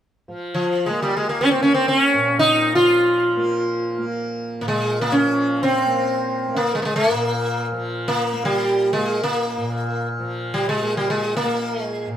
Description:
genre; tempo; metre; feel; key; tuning
indian classical, Hindustani; free time; none; none; Bb raga bhimpalasi; A4 = 440 Hz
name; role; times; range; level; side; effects
tanpura; drone; 0.3-12.2 s; Bb2 to Bb3; -27 LUFS; equal; none
sitar; melody; 0.5-12.1 s; F3 to F4; -18 LUFS; equal; none
room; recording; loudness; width
wet studio reverb, RT60 0.6 s; band playing live in one room; -18 LUFS; side -10 dB against mid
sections
0.3-12.2 A section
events
none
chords
none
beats
free time

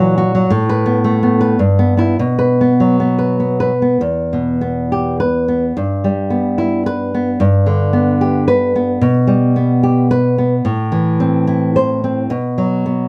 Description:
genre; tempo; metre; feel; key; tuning
romantic piece for solo classical guitar; 96-115 BPM; 3/4; rubato; E minor; A4 = 440 Hz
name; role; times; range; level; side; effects
nylon-string guitar; solo; 0.0-13.1 s; E2 to C5; -15 LUFS; equal; none
room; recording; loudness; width
light reverb; none; -15 LUFS; mono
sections
0.0-4.0 A section; 4.0-13.1 B section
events
none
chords
0.5 Asus2; 1.6 Em/G; 2.2 B5; 4.0 Em; 5.7 Em/G; 7.4 G; 9.0 G/B; 10.6 Am; 12.3 B5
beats
| 0.48 1.01 1.57 | 2.17 2.79 3.40 | 4.00 4.60 5.19 | 5.75 6.29 6.85 | 7.39 7.93 8.47 | 9.01 9.55 10.09 | 10.64 11.19 11.74 | 12.30 12.84

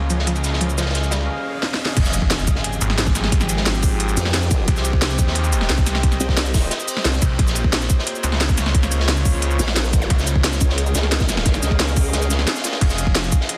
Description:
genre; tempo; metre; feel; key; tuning
dark technical drum and bass; 177 BPM; 4/4; straight; F minor; A4 = 440 Hz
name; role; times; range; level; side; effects
metallic inharmonic drone; sustained chords; 0.0-13.6 s; F3 to F5; -30 LUFS; equal; chorus, built-in reverb, sidechain pumping
snarling distorted saw bass; bass; 0.0-10.6, 12.8-13.3 s; F1 to Eb2; -24 LUFS; equal; distortion, tube saturation, sidechain pumping
riser, impact, zap and swell; sound effects; 1.3-3.3, 10.0-12.8 s; none; -32 LUFS; equal; none
analog pluck; arpeggios; 0.1-1.3 s; F3 to G3; -29 LUFS; equal; chorus, sidechain pumping, delay
crunchy breakbeat drum kit; drums; 0.1-13.6 s; hi-hat, ride cymbal, snare drum; -30 LUFS; equal; high-pass filter on cymbals, studio ambience, high-pass filter on hats, high-pass filter on snare, high-pass filter on room
drum and bass drum kit; drums; 0.1-13.6 s; cabasa, crash cymbal, hi-hat, snare drum; -25 LUFS; equal; studio ambience
electronic kick drum; drums; 2.0-13.4 s; none; -20 LUFS; equal; studio ambience
formant-sweep wobble bass; bass; 4.2-7.2, 9.6-12.5 s; Ab1 to F2; -23 LUFS; equal; chorus
room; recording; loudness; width
light reverb; dense, heavily limited modern master; -19 LUFS; mono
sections
0.0-2.0 A section; 2.0-13.6 B section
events
filter sweep on synth arpeggio sound 0.0-2.0; filter sweep 0.0-2.0; drum fill 1.6-2.0; drop 2.0-13.6; impact 2.0-3.3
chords
0.0 Db; 2.0 Fm; 4.7 Cm; 7.4 Bbmadd9; 10.1 Db; 12.8 Fm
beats
0.27 | 0.61 0.95 1.29 1.63 | 1.97 2.31 2.64 2.98 | 3.32 3.66 4.00 4.34 | 4.68 5.02 5.36 5.70 | 6.03 6.37 6.71 7.05 | 7.39 7.73 8.07 8.41 | 8.75 9.09 9.42 9.76 | 10.10 10.44 10.78 11.12 | 11.46 11.80 12.13 12.47 | 12.81 13.15 13.49

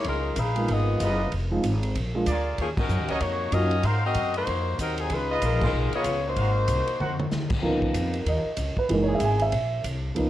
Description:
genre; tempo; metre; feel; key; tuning
jazz, big band swing; 190 BPM; 4/4; swing 61% on 8ths; Db mixolydian; A4 = 440 Hz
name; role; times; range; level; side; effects
bright saxophone section; melody; 0.0-7.3 s; F3 to F5; -27 LUFS; left 2 dB; none
upright bass; bass; 0.0-10.3 s; F1 to Ab2; -27 LUFS; equal; none
swinging big-band drum kit; drums; 0.0-10.2 s; crash cymbal, hi-hat, kick drum, ride cymbal, snare drum, toms; -32 LUFS; equal; none
dark grand piano; accompaniment; 0.6-3.7, 7.6-10.3 s; Fb3 to Ab5; -26 LUFS; right 2 dB; none
mellow trumpet section; stabs; 1.0-7.1 s; F4 to Gb5; -31 LUFS; right 1 dB; none
clear trombone section; sustained chords; 7.6-9.5 s; Fb3 to Bb4; -31 LUFS; equal; none
room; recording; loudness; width
light reverb; worn, warbling old tape, cassette tape, warbly pitch drift; -23 LUFS; side -13 dB against mid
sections
0.0-7.6 A section; 7.6-10.3 B section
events
band accent 2.7, 5.6; drum fill 7.0-7.3; grand piano solo 7.6-10.3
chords
0.1 Db13; 1.3 Fm7; 1.9 Bb7; 2.6 Ebm7; 3.8 Ab13; 5.1 Db13; 6.4 Ab13; 7.6 Db13; 8.9 Gb13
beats
| 0.05 0.37 0.68 1.00 | 1.31 1.63 1.95 2.26 | 2.58 2.89 3.21 3.53 | 3.84 4.16 4.47 4.79 | 5.11 5.42 5.74 6.05 | 6.37 6.68 7.00 7.32 | 7.63 7.95 8.26 8.58 | 8.89 9.21 9.53 9.84 | 10.16

